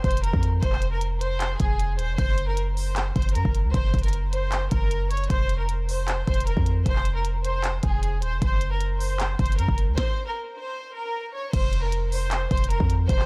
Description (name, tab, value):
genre	hip hop, trap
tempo	154 BPM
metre	4/4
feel	half-time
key	F phrygian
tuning	A4 = 439 Hz
part	warm chamber violin section	melody	0.0-13.3 s	Ab4 to Db5	-32 LUFS	equal	none
part	hard-hitting 808-style bass	bass	0.0-13.3 s	Eb1 to Gb2	-27 LUFS	equal	none
part	minimal click drum kit	drums	0.0-13.3 s	crash cymbal, handclaps, hi-hat, kick drum, snare drum	-28 LUFS	equal	none
room	digital ambience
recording	none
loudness	-25 LUFS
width	mono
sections	0.0-11.5 A section; 11.5-13.3 B section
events	stop 10.0-11.5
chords	0.0 F5; 2.2 Gb; 5.3 F5; 8.4 Gb; 11.5 F5